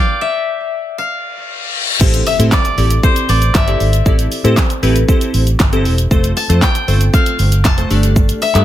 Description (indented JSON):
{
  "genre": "dance-pop",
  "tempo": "117 BPM",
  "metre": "4/4",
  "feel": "straight",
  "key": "A minor",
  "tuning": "A4 = 439 Hz",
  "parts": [
    { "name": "koto", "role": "melody", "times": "0.0-8.6 s", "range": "C5 to A5", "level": "-19 LUFS", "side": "left 4 dB", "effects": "dub echo" },
    { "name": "reverse cymbal and impact", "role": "sound effects", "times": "1.3-4.1 s", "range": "none", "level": "-21 LUFS", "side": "left 3 dB", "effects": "none" },
    { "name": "glassy digital keys", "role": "accompaniment", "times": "2.0-8.6 s", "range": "A3 to D5", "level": "-19 LUFS", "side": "left 1 dB", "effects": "chorus, sidechain pumping" },
    { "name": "vintage muted fingered electric bass", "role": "bass", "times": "2.0-8.6 s", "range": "E1 to A2", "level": "-14 LUFS", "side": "equal", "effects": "sidechain pumping" },
    { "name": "pop drum kit", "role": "drums", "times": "2.0-8.6 s", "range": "crash cymbal, handclaps, hi-hat, kick drum, shaker, snare drum", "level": "-15 LUFS", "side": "equal", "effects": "none" }
  ],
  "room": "little or no reverb",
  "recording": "none",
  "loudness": "-11 LUFS",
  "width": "side -12 dB against mid",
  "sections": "0.0-2.0 A section; 2.0-8.6 B section",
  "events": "stop 0.0-2.0; reverse cymbal 1.3-2.0; impact 2.0-4.1",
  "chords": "0.0 G7(no3); 2.0 Am7; 6.1 F; 7.9 Gsus2",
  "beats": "0.47 0.98 1.50 | 2.01 2.52 3.03 3.55 | 4.06 4.57 5.08 5.60 | 6.11 6.62 7.14 7.65 | 8.16"
}